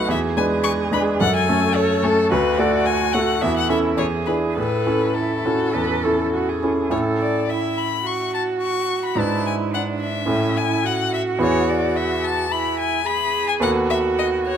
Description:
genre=quick classical-period movement for piano trio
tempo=107 BPM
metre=4/4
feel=rubato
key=A major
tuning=A4 = 440 Hz
part: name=clear violin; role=melody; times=0.0-14.6 s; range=A4 to C#6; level=-24 LUFS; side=left 8 dB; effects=none
part: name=rich cello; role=second line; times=0.0-14.6 s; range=C#4 to B4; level=-24 LUFS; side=right 4 dB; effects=none
part: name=bright grand piano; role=accompaniment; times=0.0-14.6 s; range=B1 to B4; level=-21 LUFS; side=right 1 dB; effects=none
room=moderate recital hall reverb, RT60 1.7 s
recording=close, detailed microphones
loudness=-18 LUFS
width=side -8 dB against mid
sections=0.0-6.9 A section; 6.9-14.6 B section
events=none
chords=0.1 E7; 1.2 F#m; 2.3 D; 3.4 A/E; 4.0 E7; 4.6 A; 9.2 E7/G#; 10.3 A; 11.4 E; 13.6 B7/D#

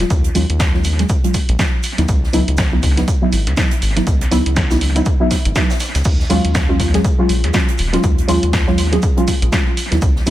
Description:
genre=deep house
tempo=121 BPM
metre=4/4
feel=swing 59% on 16ths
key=unclear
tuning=A4 = 439 Hz
part: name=filtered dub chord stab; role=stabs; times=0.0-10.3 s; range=Gb3 to Ab4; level=-19 LUFS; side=equal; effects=lush chorus, sidechain pumping, tape echo
part: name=round analog bass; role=bass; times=0.0-10.3 s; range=Eb1 to Eb2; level=-18 LUFS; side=equal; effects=sidechain pumping
part: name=open jazz drum kit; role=drums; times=0.0-10.3 s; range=hi-hat, shaker, snare drum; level=-31 LUFS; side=right 3 dB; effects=sidechain pumping on hats, high-pass filter on hats, high-pass filter on snare, sidechain pumping on perc, high-pass filter on perc, high-pass filter on room
part: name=punchy analog drum machine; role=drums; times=0.0-10.3 s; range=crash cymbal, hi-hat, snare drum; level=-23 LUFS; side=equal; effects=analog delay
part: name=electronic kick drum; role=drums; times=0.1-10.1 s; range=none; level=-17 LUFS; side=equal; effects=none
room=light reverb, studio ambience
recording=echo-heavy mix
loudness=-13 LUFS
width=side -14 dB against mid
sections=0.0-10.3 A section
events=filter sweep on synth stab 0.0-10.3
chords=0.0 Ebm11; 2.1 Dbm11; 6.1 Ebm11

